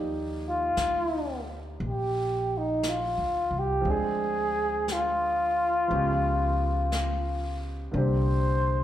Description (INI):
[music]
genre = jazz ballad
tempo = 58 BPM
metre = 4/4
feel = swing 68% on 8ths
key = Eb major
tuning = A4 = 439 Hz
[part]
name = clear concert grand piano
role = accompaniment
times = 0.0-8.8 s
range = D3 to D5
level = -34 LUFS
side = right 1 dB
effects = slapback echo
[part]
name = upright bass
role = bass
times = 0.0-8.8 s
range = Bb1 to Eb2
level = -30 LUFS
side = equal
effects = none
[part]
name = breathy flugelhorn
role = melody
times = 0.5-8.8 s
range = Eb4 to C5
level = -27 LUFS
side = equal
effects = slapback echo
[part]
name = jazz brush drum kit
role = drums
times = 0.8-8.8 s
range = brushed snare drum, hi-hat, snare drum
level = -39 LUFS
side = left 1 dB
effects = none
[sound]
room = moderate plate reverb, RT60 2.4 s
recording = live gig heard through the venue's PA, club reverb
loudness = -25 LUFS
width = side -12 dB against mid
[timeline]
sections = 0.0-8.8 A section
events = none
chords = 0.0 Ebmaj9; 3.9 Dm7b5; 5.9 Db7#11; 7.9 Csus2